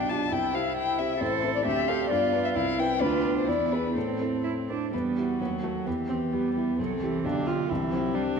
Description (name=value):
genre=quick classical-period movement for piano quartet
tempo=132 BPM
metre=2/4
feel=rubato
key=A minor, E minor from 4.9 s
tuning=A4 = 440 Hz
part: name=dark violin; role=melody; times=0.0-8.4 s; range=F#4 to A5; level=-30 LUFS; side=left 8 dB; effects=none
part: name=warm cello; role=second line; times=0.0-8.4 s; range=D3 to A4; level=-31 LUFS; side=right 8 dB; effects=none
part: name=dark baby grand piano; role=accompaniment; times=0.0-8.4 s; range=A1 to B4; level=-30 LUFS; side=left 1 dB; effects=none
part: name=dark viola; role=accompaniment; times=0.0-8.4 s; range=A3 to F4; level=-32 LUFS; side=right 4 dB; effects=none
room=wet concert hall reverb, RT60 2.3 s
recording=none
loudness=-25 LUFS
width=side -6 dB against mid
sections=0.0-4.9 A section; 4.9-8.4 B section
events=none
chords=0.3 C; 1.2 Am; 1.7 Dm7; 2.1 G; 2.6 Cmaj7; 3.0 Bdim/D; 3.5 E7; 4.0 Am; 4.9 Em; 5.4 B7/D#; 5.9 Em; 6.8 C; 7.2 G7/B; 7.7 C